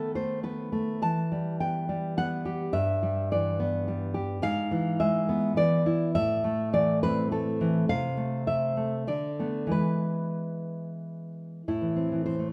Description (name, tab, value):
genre	romantic piece for solo classical guitar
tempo	104 BPM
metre	3/4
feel	rubato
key	E minor, A minor from 4.4 s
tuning	A4 = 441 Hz
part	nylon-string guitar	solo	0.0-12.5 s	G2 to A5	-28 LUFS	equal	none
room	moderate scoring stage reverb, RT60 1.8 s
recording	none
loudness	-28 LUFS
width	mono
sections	0.0-11.7 A section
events	none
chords	0.0 B7/D#; 1.0 Em; 2.8 Em/G; 4.4 E/G#; 6.2 Am; 7.9 Am/C; 9.1 Bm7/D; 9.7 E; 11.7 Am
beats	0.45 | 1.03 1.61 2.19 | 2.75 3.31 3.88 | 4.44 5.01 5.58 | 6.15 6.73 7.31 | 7.89 8.46 9.08 | 9.72 10.40 11.05 | 11.68 12.25